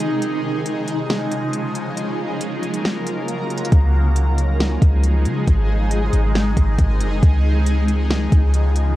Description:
hip hop, atmospheric cloud-rap; 137 BPM; 4/4; half-time; Db major; A4 = 440 Hz
shimmering ambient pad; sustained chords; 0.0-9.0 s; C3 to Bb4; -22 LUFS; equal; chorus, built-in reverb, phaser, sidechain pumping
smooth R&B drum kit; drums; 0.0-8.9 s; hi-hat, kick drum, snare drum; -19 LUFS; equal
clean 808-style bass; bass; 3.7-9.0 s; Gb1 to Db3; -17 LUFS; equal
light reverb, digital ambience; worn, warbling old tape, cassette tape, warbly pitch drift; -16 LUFS; side -15 dB against mid
0.0-9.0 A section
break 0.0-3.7
0.2 Dbadd9; 2.0 Gbmaj7; 3.7 Dbadd9; 5.5 Ab; 7.2 Dbadd9

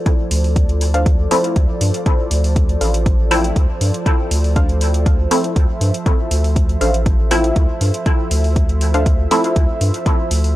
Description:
dub techno; 120 BPM; 4/4; straight; D minor; A4 = 440 Hz
dark analog pad; sustained chords; 0.0-10.6 s; F3 to E5; -25 LUFS; right 1 dB; chorus, sidechain pumping
filtered dub chord stab; stabs; 0.0-10.6 s; F3 to E4; -21 LUFS; equal; chorus, phaser, sidechain pumping, dub echo
electronic hi-hat; drums; 0.1-10.5 s; -27 LUFS; equal; small room ambience
electronic kick drum; drums; 0.1-10.2 s; -16 LUFS; equal; small room ambience
round analog bass; bass; 0.3-10.6 s; A1 to G2; -17 LUFS; equal; transformer saturation, sidechain pumping
filtered dub chord stab; riff; 0.9-9.0 s; D4 to F5; -24 LUFS; equal; chorus, sidechain pumping, dub echo
digital ambience; dry, gritty hardware recording; -14 LUFS; side -15 dB against mid
0.0-10.6 A section
0.0 Dm7

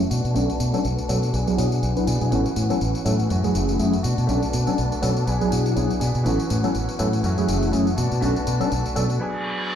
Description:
filtered disco house; 122 BPM; 4/4; swing 56% on 16ths; A4 = 440 Hz
muted studio string section; sustained chords; 0.0-9.2 s; A3 to A5; -32 LUFS; left 1 dB; vintage 12-bit sampler grit, low-pass filter
direct-recorded clean electric guitar; riff; 0.0-9.8 s; E3 to G#4; -29 LUFS; equal; low-pass filter
tambourine; drums; 0.0-9.2 s; -34 LUFS; left 3 dB
modern bright fingered electric bass; bass; 0.1-9.2 s; F#1 to B2; -23 LUFS; equal; tube saturation, low-pass filter
tine electric piano; accompaniment; 0.3-9.0 s; F#3 to B4; -24 LUFS; equal; phaser, vintage 12-bit sampler grit, low-pass filter
reverse cymbal; sound effects; 9.3-9.8 s; -26 LUFS; right 1 dB
light reverb; played on a big sound system in a bare room, large studio reverb; -20 LUFS; side -9 dB against mid
0.0-9.8 A section
filter sweep 0.0-9.8; break 9.2-9.8; reverse cymbal 9.3-9.8
0.1 Bm7; 1.3 E9/B; 2.3 A69; 3.3 F#m7; 4.0 Bm7; 5.3 E9/B; 6.3 A69; 7.2 F#m7; 8.0 Bm7; 9.2 Bm6/F#

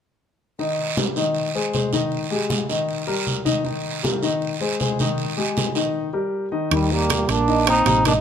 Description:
Afro-Cuban jazz; 157 BPM; 4/4; straight; Eb major; A4 = 440 Hz
warm grand piano; accompaniment; 0.6-8.2 s; Eb3 to Eb5; -23 LUFS; left 3 dB
congas; percussion; 0.6-8.2 s; -28 LUFS; equal
guiro; percussion; 0.6-8.2 s; -29 LUFS; right 8 dB
trombone with metal mute; melody; 6.7-8.2 s; G3 to Eb4; -20 LUFS; right 1 dB; slapback echo
mellow French horn; second line; 6.7-8.2 s; Eb3 to C4; -24 LUFS; right 5 dB
hollow-body short-scale fingered electric bass; bass; 6.7-8.2 s; A1 to Eb2; -24 LUFS; right 1 dB
timbales; percussion; 6.7-8.2 s; -24 LUFS; right 9 dB
light reverb; -19 LUFS; side -8 dB against mid
0.6-6.7 A section; 6.7-8.2 B section
break 6.0-6.7
0.6 Eb; 1.4 Ab/Eb; 2.1 Ab5; 2.9 Eb; 4.4 Ab/Eb; 5.2 Ab5; 6.0 Eb; 6.7 Eb6

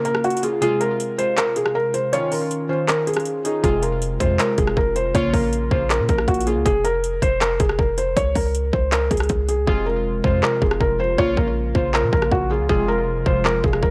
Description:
hip hop, trap; 159 BPM; 4/4; half-time; F minor; A4 = 439 Hz
felt-muted upright piano; melody; 0.0-13.9 s; Gb4 to Db5; -23 LUFS; equal; tape echo
warbly lo-fi synth keys; accompaniment; 0.0-6.7, 9.7-13.9 s; C3 to F4; -28 LUFS; equal; chorus, phaser
trap drum kit; drums; 0.1-13.9 s; handclaps, hi-hat, kick drum, rim click; -25 LUFS; equal; overdrive
warm 808-style bass; bass; 3.6-13.9 s; F1 to Bb2; -27 LUFS; equal
warbly tape-like pad; sustained chords; 10.4-13.9 s; C3 to F4; -35 LUFS; equal
digital ambience; dry, gritty hardware recording, cassette tape; -20 LUFS; mono
0.0-13.9 A section
break 0.0-3.6; hi-hats muted 9.7-13.9
0.0 Bbm; 0.6 Fm; 2.1 Dbadd9; 3.6 Fm; 5.1 Bbm; 6.7 Fmadd11; 8.2 Db5; 9.7 Fm; 11.2 Bbm; 12.7 Fm

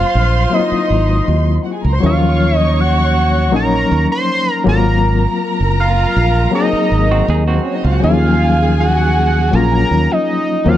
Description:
soul; 80 BPM; 4/4; straight; Eb dorian; A4 = 440 Hz
fat analog lead; melody; 0.0-10.8 s; Eb5 to C6; -18 LUFS; equal; chorus
dark studio violin section; second line; 0.0-10.8 s; Bb3 to Db6; -22 LUFS; right 1 dB
barky reed electric piano; accompaniment; 0.0-10.8 s; F3 to Ab4; -18 LUFS; left 4 dB; overdrive, fast tremolo
fingered electric bass; bass; 0.0-10.8 s; Gb1 to Eb2; -14 LUFS; right 1 dB
semi-hollow electric guitar; riff; 7.1-8.0 s; C4 to Ab4; -24 LUFS; right 6 dB
light reverb, digital ambience; dark, warm production; -12 LUFS; side -12 dB against mid
0.0-10.8 A section
0.0 Ab13; 2.0 Ebm9; 4.7 Ab13; 8.0 Ebm9

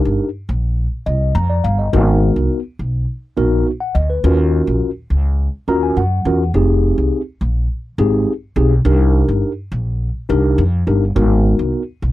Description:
early-eighties boogie funk; 104 BPM; 4/4; straight; A4 = 440 Hz
mellow tine electric piano; accompaniment; 0.0-11.8 s; Bb3 to Bb5; -17 LUFS; left 1 dB; medium stereo tremolo
upright bass; bass; 0.1-12.1 s; F1 to Gb2; -16 LUFS; equal
little or no reverb; dry, close 1970s-style studio recording; -14 LUFS; side -16 dB against mid
0.0-12.1 A section
tine electric piano fill 0.8-1.9, 5.4-6.5
0.0 Cm9; 1.9 Abm9; 4.2 Ebm9; 6.5 Fm9; 8.9 Cm9; 11.2 Abm9

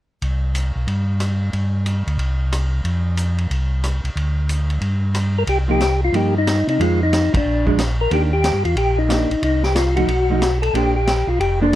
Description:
soul jazz organ trio; 182 BPM; 4/4; swing 64% on 8ths; C minor; A4 = 440 Hz
mellow tonewheel organ; bass; 0.2-11.8 s; F1 to C3; -19 LUFS; equal; overdrive, chorus vibrato, slow rotary speaker
vintage drum kit; drums; 0.2-11.8 s; hi-hat, kick drum, ride cymbal, rim click, snare drum; -26 LUFS; equal
percussive tonewheel organ; melody; 5.4-11.8 s; D4 to Bb4; -19 LUFS; left 2 dB; slow rotary speaker
vintage hollow-body jazz guitar; accompaniment; 5.7-11.7 s; Eb3 to C5; -21 LUFS; right 4 dB
light reverb; dark, warm production; -17 LUFS; side -14 dB against mid
0.2-5.5 A section; 5.5-11.8 B section
band accent 7.3
0.2 C5; 1.5 G5; 2.2 N.C.; 2.9 F5; 4.2 N.C.; 5.5 Cm7; 6.8 Fm7; 7.5 Bb7; 8.1 Ebmaj7; 9.4 Cm; 10.1 B7#11; 10.7 Bbmaj9

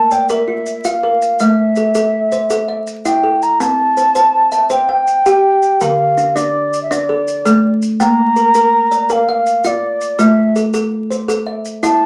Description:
southern african traditional, mbira-style interlocking cycle; 109 BPM (dotted quarters); 12/8; straight; C mixolydian; A4 = 438 Hz
mellow baroque flute; melody; 0.0-12.1 s; D5 to Bb5; -16 LUFS; equal
kalimba; arpeggios; 0.0-12.1 s; D3 to A5; -18 LUFS; equal
maracas; percussion; 0.1-12.0 s; -34 LUFS; equal
wet small room reverb, RT60 0.5 s; vinyl crackle; -14 LUFS; mono
0.0-3.6 A section; 3.6-12.1 B section
0.0 Bb; 1.4 Am; 3.6 C; 5.8 Dm; 8.0 Bb; 10.2 Am

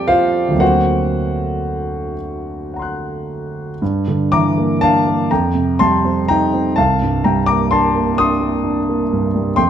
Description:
classical, impressionist solo piano; 36-44 BPM (dotted quarters); 6/8; rubato; A4 = 440 Hz
warm concert grand piano; solo; 0.0-9.7 s; C2 to F#6; -14 LUFS; equal
moderate stone room reverb, RT60 1.1 s; dark, warm production; -14 LUFS; side -9 dB against mid
0.0-3.8 A section; 3.8-9.7 B section
0.0 F69; 0.6 Daug7; 3.8 Gm6; 5.3 Fsus2; 6.8 Cm9

